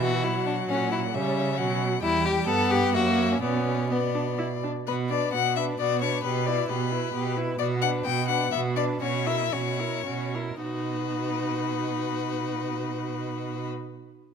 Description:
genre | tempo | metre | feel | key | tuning
quick classical-period movement for string quartet | 105-136 BPM | 3/4 | rubato | B minor | A4 = 440 Hz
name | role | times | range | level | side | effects
clear violin | melody | 0.0-13.7 s | B4 to G5 | -30 LUFS | left 14 dB | none
clear violin | second line | 0.0-13.7 s | B3 to B4 | -31 LUFS | left 4 dB | none
rich viola | accompaniment | 0.0-13.7 s | E3 to E4 | -30 LUFS | right 3 dB | none
warm cello | bass | 0.0-13.7 s | E2 to C#3 | -30 LUFS | right 6 dB | none
room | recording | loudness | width
moderate recital hall reverb, RT60 1.5 s | close, detailed microphones | -24 LUFS | side -7 dB against mid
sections
0.0-4.9 A section; 4.9-10.6 B section; 10.6-14.0 C section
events
slowing down 6.9-10.6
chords
0.0 B5; 0.7 A#dim7; 1.6 B5; 2.0 Em; 2.9 F#7; 3.4 Bm; 6.2 Em/B; 7.6 Bm; 9.0 F#7/B; 10.6 B

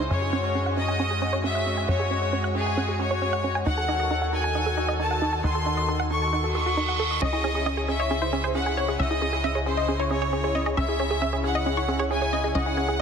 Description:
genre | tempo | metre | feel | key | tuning
trance | 135 BPM | 4/4 | straight | C# harmonic minor | A4 = 440 Hz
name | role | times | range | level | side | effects
supersaw pad | sustained chords | 0.0-13.0 s | C#3 to A4 | -31 LUFS | left 1 dB | none
wide unison pluck | arpeggios | 0.0-13.0 s | C#4 to D#6 | -30 LUFS | right 3 dB | dub echo
tight sequencer bass | bass | 0.0-13.0 s | C#2 to F#2 | -28 LUFS | equal | none
clear chamber violin section | second line | 0.1-13.0 s | G#4 to C#6 | -28 LUFS | left 1 dB | dub echo
reverse cymbal | sound effects | 6.5-7.2 s | none | -35 LUFS | right 7 dB | none
wide unison pluck | melody | 7.2-13.0 s | G#4 to E5 | -28 LUFS | moving between left 4 dB and right 4 dB | auto-pan, dub echo
dark concert grand piano | second line | 7.2-13.0 s | G#5 to E6 | -36 LUFS | equal | dub echo
room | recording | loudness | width
moderate huge ambient reverb, RT60 8.9 s | dense, heavily limited modern master | -22 LUFS | side -6 dB against mid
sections
0.0-13.0 A section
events
reverse cymbal 6.5-7.2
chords
0.1 F#sus2; 3.7 D#dim; 7.2 C#madd9

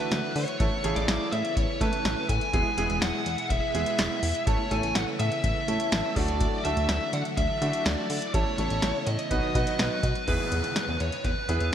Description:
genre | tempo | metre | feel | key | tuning
synth-pop | 124 BPM | 4/4 | straight | E mixolydian | A4 = 440 Hz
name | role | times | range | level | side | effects
fuzz lead guitar | melody | 0.0-11.7 s | B4 to G#5 | -30 LUFS | left 1 dB | distortion, shimmer reverb, digital delay
clear concert grand piano | accompaniment | 0.0-11.7 s | C#3 to D#5 | -32 LUFS | right 3 dB | shimmer reverb
string machine, violins | sustained chords | 0.0-10.3 s | B2 to G#4 | -35 LUFS | left 1 dB | ensemble chorus, shimmer reverb
chorused synth bass | bass | 0.1-11.7 s | E1 to D3 | -30 LUFS | equal | none
electro analog drum machine | drums | 0.1-11.7 s | hi-hat, kick drum, snare drum | -29 LUFS | equal | none
downlifter | sound effects | 10.3-11.7 s | none | -36 LUFS | left 2 dB | none
room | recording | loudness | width
moderate lush hall reverb, RT60 1.8 s | bright 1980s-style digital production | -24 LUFS | side -9 dB against mid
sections
0.0-10.3 A section; 10.3-11.7 B section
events
grand piano fill 9.6-10.3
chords
0.0 Dadd9; 0.6 Aadd9; 2.5 E; 4.5 Aadd9; 6.2 Dadd9; 8.3 Aadd9; 9.3 B; 10.3 E

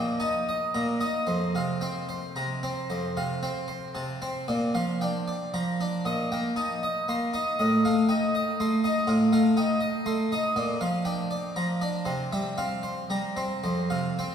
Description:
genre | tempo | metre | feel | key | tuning
classical, baroque-style suite movement for harpsichord | 72-83 BPM (dotted quarters) | 12/8 | rubato | unclear | A4 = 442 Hz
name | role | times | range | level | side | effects
harpsichord | solo | 0.0-14.3 s | F2 to C6 | -25 LUFS | equal | none
room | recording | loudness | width
wet cathedral reverb, RT60 4.2 s | recorded in a church or concert hall | -25 LUFS | side -8 dB against mid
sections
0.0-14.3 A section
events
none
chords
0.0 Eb; 1.3 Fsus4; 2.9 F; 4.5 Bb; 6.1 Cm7/Bb; 7.6 F7/A; 10.5 Bb; 12.0 C7; 13.6 F5

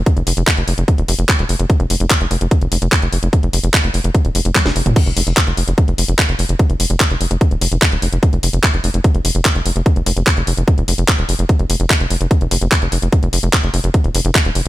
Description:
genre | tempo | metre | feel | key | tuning
psychedelic trance | 147 BPM | 4/4 | straight | unclear | A4 = 442 Hz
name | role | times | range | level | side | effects
electronic kick drum | drums | 0.1-14.4 s | none | -14 LUFS | equal | studio reverb
garage drum kit | drums | 0.1-14.7 s | crash cymbal, handclaps, hi-hat, snare drum, toms | -18 LUFS | equal | studio reverb
tight sequencer bass | bass | 0.2-14.7 s | Eb1 to F1 | -17 LUFS | equal | none
room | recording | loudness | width
little or no reverb | none | -13 LUFS | side -16 dB against mid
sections
0.0-14.7 A section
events
drum fill 4.6-5.0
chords
none

